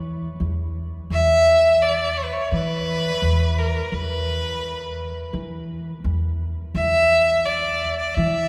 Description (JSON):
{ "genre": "Arabic maqam ensemble", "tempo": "85 BPM", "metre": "4/4", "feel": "straight", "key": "unclear", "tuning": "A4 = 438 Hz", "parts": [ { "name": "upright bass", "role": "bass", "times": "0.0-8.5 s", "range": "E2 to E3", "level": "-27 LUFS", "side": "equal", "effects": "none" }, { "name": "rich violin", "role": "melody", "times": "1.1-8.5 s", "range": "A#4 to E5", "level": "-22 LUFS", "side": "equal", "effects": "none" } ], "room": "wet cathedral reverb, RT60 7.1 s", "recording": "recorded in a church or concert hall", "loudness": "-21 LUFS", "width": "mono", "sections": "0.0-8.5 A section", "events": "none", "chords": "none" }